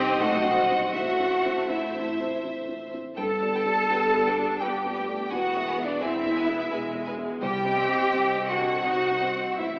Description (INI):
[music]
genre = cinematic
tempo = 83 BPM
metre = 3/4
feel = uneven beats, rubato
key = unclear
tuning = A4 = 440 Hz
[part]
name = clear studio violin section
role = melody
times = 0.0-9.8 s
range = D5 to A5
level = -38 LUFS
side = equal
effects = none
[part]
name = clear studio violin section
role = second line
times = 0.0-9.7 s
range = B4 to G#5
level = -37 LUFS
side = equal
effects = none
[part]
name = mellow hollow concert flute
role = second line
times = 0.0-9.8 s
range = D5 to A5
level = -32 LUFS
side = equal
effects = none
[part]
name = clear studio viola section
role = accompaniment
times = 0.0-9.8 s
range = D3 to Eb4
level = -37 LUFS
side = equal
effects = none
[part]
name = felt-muted upright piano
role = accompaniment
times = 0.0-9.8 s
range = A1 to E5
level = -35 LUFS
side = equal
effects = none
[part]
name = dark French horn section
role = sustained chords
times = 0.0-9.8 s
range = D4 to A4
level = -35 LUFS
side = equal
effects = none
[part]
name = rich studio cello section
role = bass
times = 0.0-9.8 s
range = D4 to A4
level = -30 LUFS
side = equal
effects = none
[part]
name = rich studio double bass section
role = bass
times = 0.0-9.8 s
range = E1 to C2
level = -44 LUFS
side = equal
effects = none
[sound]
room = wet scoring stage reverb, RT60 1.6 s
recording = heard from further back in the room, AM radio sound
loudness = -26 LUFS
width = mono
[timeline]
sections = 0.0-9.8 A section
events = none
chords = 0.0 Cm; 0.9 Am; 3.2 G; 5.3 E; 7.4 Cm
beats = 0.20 | 0.94 1.69 2.43 | 3.17 3.90 4.61 | 5.31 6.01 6.71 | 7.42 8.12 8.83 | 9.58